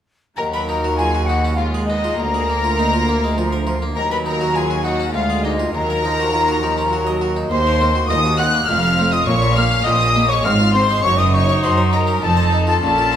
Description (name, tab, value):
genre	classical, baroque-style concerto movement with solo episodes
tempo	101 BPM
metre	3/4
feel	straight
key	Eb minor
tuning	A4 = 440 Hz
part	silver concert flute	melody	0.4-13.2 s	Eb5 to Gb6	-22 LUFS	left 2 dB	none
part	warm chamber violin section	melody	0.4-13.2 s	Eb5 to Gb6	-23 LUFS	left 3 dB	none
part	rich chamber violin section	second line	0.4-13.2 s	Eb4 to Gb5	-24 LUFS	left 3 dB	none
part	harpsichord	accompaniment	0.4-13.2 s	D2 to Eb5	-25 LUFS	left 1 dB	none
part	warm chamber viola section	accompaniment	0.4-13.2 s	Eb3 to Eb4	-25 LUFS	right 1 dB	none
part	rich chamber double bass section	bass	0.4-13.2 s	F1 to Gb2	-23 LUFS	right 2 dB	none
part	warm chamber cello section	bass	0.4-13.2 s	D2 to Gb3	-22 LUFS	right 1 dB	none
room	wet recital hall reverb, RT60 1.5 s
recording	none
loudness	-15 LUFS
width	side -9 dB against mid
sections	0.4-13.2 A section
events	none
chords	0.4 Ebm; 1.6 Fm7b5/Eb; 2.2 Bb7/D; 4.0 Ebm; 5.1 Bb7/D; 5.7 Ebm; 7.5 Cm7b5/Eb; 8.7 F; 9.3 Bbm; 10.4 Fm/Ab; 11.0 Ebm/Gb; 12.2 F7